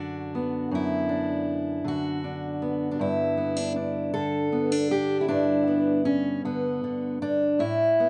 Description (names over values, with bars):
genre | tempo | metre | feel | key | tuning
folk, solo fingerstyle acoustic guitar | 52 BPM (dotted quarters) | 6/8 | straight | unclear | A4 = 440 Hz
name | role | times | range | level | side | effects
fingerpicked steel-string acoustic guitar | solo | 0.0-8.1 s | F#2 to A4 | -26 LUFS | equal | slapback echo
room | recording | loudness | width
little or no reverb | recorded outdoors, with no room sound, nothing above 10.7 kHz | -26 LUFS | mono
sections
0.0-7.6 A section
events
none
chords
0.0 Bm/F#; 3.0 Gadd9